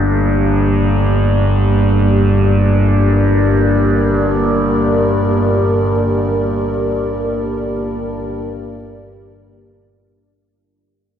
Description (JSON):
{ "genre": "dark ambient drone", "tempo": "free time", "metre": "none", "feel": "none", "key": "G minor", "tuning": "A4 = 440 Hz", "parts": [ { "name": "dark analog pad", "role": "sustained chords", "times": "0.0-10.5 s", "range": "Bb3 to D5", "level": "-18 LUFS", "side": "equal", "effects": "chorus" }, { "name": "overtone-sweeping drone", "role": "drone", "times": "0.0-10.6 s", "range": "G1 to G2", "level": "-14 LUFS", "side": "equal", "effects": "chorus, built-in reverb" } ], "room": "wet huge ambient reverb, RT60 8.1 s", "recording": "none", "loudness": "-12 LUFS", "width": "side -9 dB against mid", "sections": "0.0-10.5 A section", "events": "fade-in on analog synth pad 0.0-10.5; fade-out 5.3-10.5", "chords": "0.0 Gmadd9" }